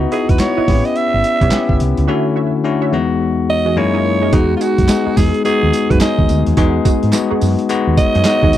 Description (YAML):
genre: R&B, new jack swing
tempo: 107 BPM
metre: 4/4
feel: swing 62% on 16ths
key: unclear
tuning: A4 = 444 Hz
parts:
  - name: bell-like tine electric piano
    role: accompaniment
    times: 0.0-8.6 s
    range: E2 to G#5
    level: -16 LUFS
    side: left 5 dB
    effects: none
  - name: funky polysynth comp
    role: stabs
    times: 0.0-8.6 s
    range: E3 to E5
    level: -23 LUFS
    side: right 8 dB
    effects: chorus, tape echo
  - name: woody fretless electric bass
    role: bass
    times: 0.0-8.6 s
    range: G1 to G#2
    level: -17 LUFS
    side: right 1 dB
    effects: none
  - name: breathy alto saxophone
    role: melody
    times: 0.1-8.6 s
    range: E#4 to E5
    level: -18 LUFS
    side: right 3 dB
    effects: none
  - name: boom bap sampler-style drum kit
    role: drums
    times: 0.1-8.6 s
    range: handclaps, hi-hat, kick drum, snare drum, tambourine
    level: -16 LUFS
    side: right 1 dB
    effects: overdrive
  - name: group handclap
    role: percussion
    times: 0.4-8.4 s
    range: none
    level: -34 LUFS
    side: right 11 dB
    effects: none
room: little or no reverb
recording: dry, close 1970s-style studio recording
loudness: -12 LUFS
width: side -12 dB against mid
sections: 0.0-4.3 A section; 4.3-8.6 B section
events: tine electric piano fill 3.5-4.3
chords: 0.0 C#m11; 0.7 A9 (rootless); 2.1 Dmaj9; 2.9 Emaj9; 3.8 F#13; 4.3 Emaj9